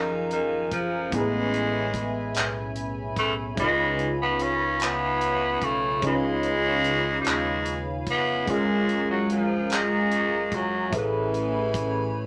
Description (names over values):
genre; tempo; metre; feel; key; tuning
slow six-eight R&B; 49 BPM (dotted quarters); 6/8; straight; unclear; A4 = 437 Hz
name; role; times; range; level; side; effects
growling tenor saxophone; melody; 0.0-12.3 s; D#3 to C#4; -28 LUFS; equal; none
barky tine electric piano; accompaniment; 0.0-12.3 s; A2 to C#5; -30 LUFS; equal; overdrive, phaser
hollow soft pad; sustained chords; 0.0-12.3 s; A3 to B5; -38 LUFS; equal; chorus
sub bass with octave; bass; 0.0-12.1 s; E#1 to D#2; -43 LUFS; equal; none
damped 70s drum kit; drums; 0.3-11.9 s; handclaps, hi-hat, kick drum; -32 LUFS; equal; none
room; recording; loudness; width
wet studio reverb, RT60 0.6 s; none; -25 LUFS; mono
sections
0.0-12.3 A section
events
none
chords
0.0 F#maj9; 1.1 Amaj9; 3.6 C#7; 8.5 F#maj9; 10.9 Amaj9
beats
| 1.13 2.35 | 3.58 4.80 | 6.03 7.25 | 8.47 9.70 | 10.92 12.15